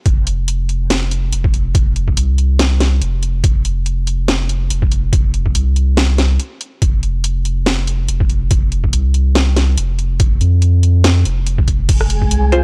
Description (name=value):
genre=deep dubstep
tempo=142 BPM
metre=4/4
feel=swing 56% on 16ths, half-time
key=F minor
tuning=A4 = 442 Hz
part: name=saturated sub bass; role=bass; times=0.1-12.6 s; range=F1 to F2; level=-17 LUFS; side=equal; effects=none
part: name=electronic kick drum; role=drums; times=0.1-12.3 s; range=none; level=-17 LUFS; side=equal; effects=none
part: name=garage drum kit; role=drums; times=0.1-12.6 s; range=crash cymbal, hi-hat, rim click, snare drum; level=-21 LUFS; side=equal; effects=none
part: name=wind-like tuned noise texture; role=texture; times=12.1-12.6 s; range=Ab3 to Ab4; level=-24 LUFS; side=equal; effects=built-in reverb
part: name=filtered dub chord stab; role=stabs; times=12.5-12.6 s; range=C4 to C5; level=-15 LUFS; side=equal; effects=phaser, subtle chorus
room=little or no reverb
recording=dry, gritty hardware recording, cassette tape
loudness=-15 LUFS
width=mono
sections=0.0-12.6 A section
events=none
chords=0.0 F5